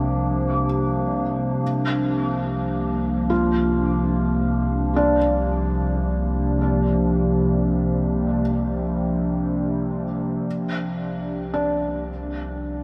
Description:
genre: ambient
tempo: 54 BPM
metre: 4/4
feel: straight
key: unclear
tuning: A4 = 438 Hz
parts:
  - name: warbly tape-like pad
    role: sustained chords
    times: 0.0-12.8 s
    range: C3 to D4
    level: -25 LUFS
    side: equal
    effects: chorus, built-in reverb
  - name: felt-muted upright piano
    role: arpeggios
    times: 0.0-12.8 s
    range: D4 to D6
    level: -30 LUFS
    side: equal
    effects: diffuse ambient delay
  - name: warm sub bass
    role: bass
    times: 0.0-12.8 s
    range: C2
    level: -30 LUFS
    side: equal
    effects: none
  - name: analog drone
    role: drone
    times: 0.0-12.8 s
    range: C3 to G3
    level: -31 LUFS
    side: equal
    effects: chorus
room: wet huge ambient reverb, RT60 8.7 s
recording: none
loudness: -23 LUFS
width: mono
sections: 0.0-12.8 A section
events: fade-out 7.5-12.8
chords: 0.0 Bb/C

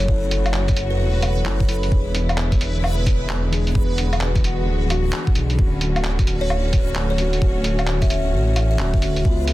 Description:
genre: future garage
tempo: 131 BPM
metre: 4/4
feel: swing 63% on 16ths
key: unclear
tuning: A4 = 440 Hz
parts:
  - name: buzzing kalimba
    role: melody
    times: 0.0-1.5, 6.4-9.0 s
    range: B4 to E5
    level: -28 LUFS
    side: left 1 dB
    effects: tape echo
  - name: muted felt-like synth keys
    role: accompaniment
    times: 0.0-9.5 s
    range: C#3 to A4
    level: -28 LUFS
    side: left 2 dB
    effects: chorus, sidechain pumping, tape echo
  - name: warm studio string section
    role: sustained chords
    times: 0.0-9.5 s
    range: C#3 to F#4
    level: -29 LUFS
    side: left 1 dB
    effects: sidechain pumping
  - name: dark detuned saw bass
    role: bass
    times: 0.0-9.5 s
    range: D1 to C#2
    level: -21 LUFS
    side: equal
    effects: sidechain pumping
  - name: lo-fi sampler-style drum kit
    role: drums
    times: 0.0-9.5 s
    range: handclaps, hi-hat, woodblock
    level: -26 LUFS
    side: equal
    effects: soft clipping on snare
  - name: backwards swelling texture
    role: texture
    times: 0.2-9.5 s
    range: B4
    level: -34 LUFS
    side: right 3 dB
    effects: built-in reverb
  - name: electronic kick drum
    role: drums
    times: 0.1-9.4 s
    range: none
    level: -19 LUFS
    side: equal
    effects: none
room: digital ambience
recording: dense, heavily limited modern master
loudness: -17 LUFS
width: side -16 dB against mid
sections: 0.0-9.5 A section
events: none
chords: 0.0 F#m7; 1.9 E7; 5.6 Dmaj7

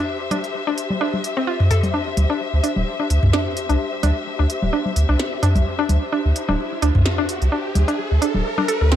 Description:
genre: minimal techno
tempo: 129 BPM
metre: 4/4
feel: swing 55% on 16ths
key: unclear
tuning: A4 = 440 Hz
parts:
  - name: saturated sub bass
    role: bass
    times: 0.0-9.0 s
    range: D1 to D2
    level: -18 LUFS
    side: equal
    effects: high-pass filter
  - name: warm studio string section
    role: texture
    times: 0.0-9.0 s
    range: G4 to E5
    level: -27 LUFS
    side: left 4 dB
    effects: none
  - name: natural country drum kit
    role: drums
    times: 0.1-1.9 s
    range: ride cymbal, snare drum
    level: -40 LUFS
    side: right 2 dB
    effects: none
  - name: mallet-like synth pluck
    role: riff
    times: 0.3-8.9 s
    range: C4 to A4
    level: -24 LUFS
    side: equal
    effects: chorus, dub echo
  - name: minimal click drum kit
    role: drums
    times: 0.3-9.0 s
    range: hi-hat, snare drum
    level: -28 LUFS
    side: right 1 dB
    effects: overdrive
  - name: electronic congas and toms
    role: percussion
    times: 0.3-8.7 s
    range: none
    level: -21 LUFS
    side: equal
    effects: overdrive
  - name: riser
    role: sound effects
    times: 3.5-9.0 s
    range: none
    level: -30 LUFS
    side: right 1 dB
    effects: none
room: small room reverb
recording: dark, warm production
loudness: -18 LUFS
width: side -11 dB against mid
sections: 0.0-1.9 A section; 1.9-9.0 B section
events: filter sweep on synth arpeggio sound 0.0-1.9, 1.9-9.0; build-up 1.9-9.0; riser 3.5-9.0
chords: 0.0 D7(no3)

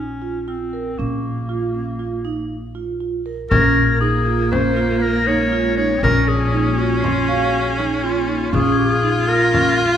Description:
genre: contemporary instrumental, chamber music in an uneven meter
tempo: 119 BPM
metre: 5/4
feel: straight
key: Bb minor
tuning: A4 = 439 Hz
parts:
  - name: warm clarinet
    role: melody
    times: 0.0-9.8 s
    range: Bb3 to Db5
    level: -22 LUFS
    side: left 2 dB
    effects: none
  - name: upright bass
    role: bass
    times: 0.0-10.0 s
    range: Bb1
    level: -23 LUFS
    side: equal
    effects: none
  - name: vibraphone with soft mallets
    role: arpeggios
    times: 0.2-10.0 s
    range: Db4 to F5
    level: -23 LUFS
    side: right 4 dB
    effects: none
  - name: rich viola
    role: second line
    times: 3.5-10.0 s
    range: Bb3 to F4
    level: -21 LUFS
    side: right 1 dB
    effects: none
  - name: icy glass pad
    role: sustained chords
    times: 4.7-10.0 s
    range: Ab3 to F5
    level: -28 LUFS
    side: left 4 dB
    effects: chorus, built-in reverb, phaser
  - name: frame drum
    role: percussion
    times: 3.5-9.8 s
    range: none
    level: -26 LUFS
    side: left 3 dB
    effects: none
  - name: glockenspiel with soft plastic mallets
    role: texture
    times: 3.5-9.8 s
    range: Ab6 to C7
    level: -28 LUFS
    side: left 7 dB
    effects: none
room: moderate recital hall reverb, RT60 1.4 s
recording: recorded in a church or concert hall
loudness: -16 LUFS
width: side -9 dB against mid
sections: 0.0-3.5 A section; 3.5-10.0 B section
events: none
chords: 0.0 Bb5; 3.5 Bbm7

